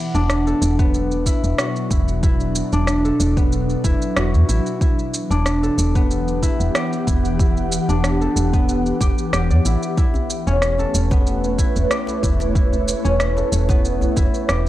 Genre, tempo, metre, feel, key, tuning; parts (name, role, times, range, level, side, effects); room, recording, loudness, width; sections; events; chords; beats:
organic downtempo; 93 BPM; 4/4; swing 54% on 16ths; E dorian; A4 = 441 Hz
ethereal airy pad; sustained chords; 0.0-14.7 s; B2 to F#5; -24 LUFS; right 1 dB; ensemble chorus, built-in reverb, sidechain pumping
concert harp; arpeggios; 0.0-14.7 s; B3 to D5; -23 LUFS; left 2 dB; tape echo
woody FM bass; bass; 0.1-14.7 s; E1 to E2; -20 LUFS; equal; transformer saturation, sidechain pumping
electronic shaker and rim click; drums; 0.1-14.7 s; -25 LUFS; right 1 dB; studio reverb
electronic kick drum; drums; 0.8-14.3 s; -18 LUFS; equal; studio reverb
djembe; percussion; 10.1-14.3 s; -26 LUFS; equal
little or no reverb; dry, gritty hardware recording; -16 LUFS; side -14 dB against mid
0.0-14.7 A section
0.0 Bm7/E; 10.0 A13/E
0.30 0.94 1.59 | 2.23 2.88 3.52 4.17 | 4.81 5.46 6.10 6.75 | 7.39 8.04 8.68 9.33 | 9.97 10.62 11.26 11.91 | 12.55 13.20 13.84 14.49